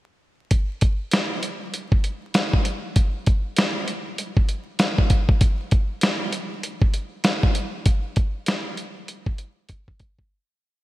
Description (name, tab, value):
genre	hip hop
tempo	98 BPM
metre	4/4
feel	swing 60% on 16ths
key	none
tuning	none
part	dusty soul sampler-style drum kit	drums	0.5-10.3 s	hi-hat, kick drum, snare drum	-20 LUFS	equal	gated reverb
room	light reverb, digital ambience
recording	bright 1980s-style digital production, vinyl crackle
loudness	-20 LUFS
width	side -17 dB against mid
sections	0.5-10.3 hook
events	fade-out 7.9-10.3; drum fill 9.7-10.3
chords	none